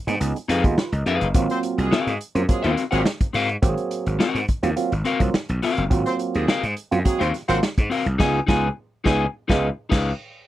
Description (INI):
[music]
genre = funk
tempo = 105 BPM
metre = 4/4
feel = straight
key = Ab mixolydian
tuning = A4 = 440 Hz
[part]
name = mellow clav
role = stabs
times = 0.1-9.7 s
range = Gb3 to F5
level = -25 LUFS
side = right 4 dB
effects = phaser
[part]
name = gritty slap bass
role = bass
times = 0.1-10.1 s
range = Gb1 to Ab2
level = -24 LUFS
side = equal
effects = overdrive
[part]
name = vintage drum kit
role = drums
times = 0.1-10.1 s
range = crash cymbal, hi-hat, kick drum, snare drum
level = -22 LUFS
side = equal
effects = none
[part]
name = clean electric guitar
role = accompaniment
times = 0.5-10.1 s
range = C4 to Ab5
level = -22 LUFS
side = left 4 dB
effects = none
[part]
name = warm horn section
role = second line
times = 1.5-7.6 s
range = Ab3 to C5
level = -28 LUFS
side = right 1 dB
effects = none
[sound]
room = little or no reverb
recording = dry, close 1970s-style studio recording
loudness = -19 LUFS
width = side -14 dB against mid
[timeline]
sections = 0.0-10.5 A section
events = band accent 8.2-10.5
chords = 0.0 Db9; 1.3 Ab13; 8.2 Db9